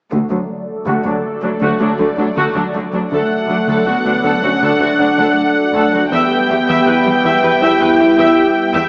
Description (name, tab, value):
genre	cinematic, hybrid orchestral and electronic film score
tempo	80 BPM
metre	4/4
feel	straight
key	unclear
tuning	A4 = 440 Hz
part	rich symphonic viola section	accompaniment	0.1-8.9 s	D3 to G5	-15 LUFS	equal	low-pass filter
part	phased analog pad	sustained chords	0.1-8.9 s	F#3 to E5	-20 LUFS	equal	phaser, chorus, low-pass filter
part	tight sequenced synth	arpeggios	0.1-8.9 s	D3 to E4	-23 LUFS	equal	chorus, phaser, low-pass filter, digital delay
part	rich symphonic cello section	bass	0.1-8.8 s	D2 to E2	-22 LUFS	equal	none
part	mellow French horn section	sustained chords	3.1-8.7 s	A3 to E4	-15 LUFS	equal	low-pass filter
room	wet scoring stage reverb, RT60 1.9 s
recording	small speaker sound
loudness	-11 LUFS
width	side -37 dB against mid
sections	0.1-3.1 A section; 3.1-8.9 B section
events	filter sweep 0.1-3.1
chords	0.1 D; 6.1 Em